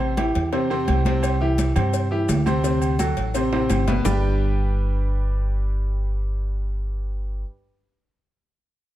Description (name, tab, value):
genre	latin, salsa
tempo	170 BPM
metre	4/4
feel	straight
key	G major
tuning	A4 = 440 Hz
part	bright grand piano	accompaniment	0.0-7.4 s	B2 to G5	-25 LUFS	equal	none
part	upright bass	bass	0.0-7.4 s	G1 to G2	-22 LUFS	equal	none
part	agogo bells and timbales	percussion	0.0-4.1 s	none	-29 LUFS	right 4 dB	none
part	congas	percussion	0.0-4.1 s	none	-28 LUFS	left 1 dB	none
part	cowbell and bongos	percussion	0.2-4.1 s	none	-33 LUFS	left 6 dB	none
part	maracas	percussion	1.2-4.1 s	none	-38 LUFS	left 10 dB	none
room	light reverb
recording	none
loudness	-20 LUFS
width	side -14 dB against mid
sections	0.0-4.1 A section; 4.1-6.9 B section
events	drum fill 3.5-4.1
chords	0.0 Am7; 1.2 C; 2.6 D7; 4.1 G